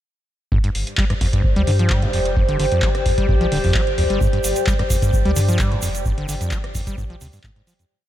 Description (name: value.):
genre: acid house.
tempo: 130 BPM.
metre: 4/4.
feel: straight.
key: unclear.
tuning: A4 = 440 Hz.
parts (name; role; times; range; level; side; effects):
warbly tape-like pad; sustained chords; 1.3-7.9 s; C5; -26 LUFS; equal; chorus, built-in reverb, phaser, sidechain pumping.
acid bass, saw; riff; 0.5-7.9 s; F2 to G3; -23 LUFS; equal; overdrive, cassette tape, sidechain pumping, diffuse ambient delay.
saturated sub bass; bass; 0.5-7.3 s; D1 to G2; -22 LUFS; equal; tube saturation, sidechain pumping.
electronic kick drum; drums; 0.5-7.5 s; none; -20 LUFS; equal; small room ambience.
warbly tape-like pad; texture; 1.3-7.9 s; G4 to G5; -28 LUFS; left 2 dB; chorus, built-in reverb, phaser, sidechain pumping.
booming analog drum machine; drums; 0.6-7.9 s; handclaps, hi-hat, rim click; -28 LUFS; equal; small room ambience.
egg shaker; percussion; 4.2-7.9 s; none; -30 LUFS; right 4 dB; none.
room: light reverb.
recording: none.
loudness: -16 LUFS.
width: side -12 dB against mid.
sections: 0.5-7.9 drop.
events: drop 0.5-7.9; fade-out 5.4-7.9.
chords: 0.5 G7(no3).